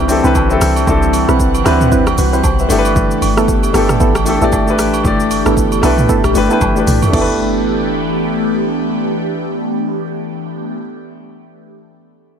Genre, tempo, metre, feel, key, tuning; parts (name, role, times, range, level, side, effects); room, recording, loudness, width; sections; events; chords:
amapiano; 115 BPM; 4/4; swing 58% on 16ths; G major; A4 = 440 Hz
warm baby grand piano; accompaniment; 0.0-12.4 s; A3 to E5; -16 LUFS; left 2 dB
airy breathy pad; sustained chords; 0.0-10.8 s; E3 to F#5; -19 LUFS; equal; chorus, phaser, sidechain pumping
deep log drum bass; bass; 0.0-10.8 s; G1 to D2; -18 LUFS; equal
deep house drum kit; drums; 0.1-7.3 s; crash cymbal, hi-hat, kick drum, rim click, shaker, toms; -18 LUFS; equal
percussive organ stab; stabs; 0.2-10.8 s; B3 to B4; -20 LUFS; right 6 dB; chorus, tape echo
agogo bells and woodblock; percussion; 0.4-7.4 s; -24 LUFS; right 10 dB
light reverb, digital ambience; -11 LUFS; side -8 dB against mid
0.0-7.1 A section; 7.1-11.3 B section
drop 0.0-7.1; drum fill 6.6-7.1
0.0 Cmaj7; 2.7 G69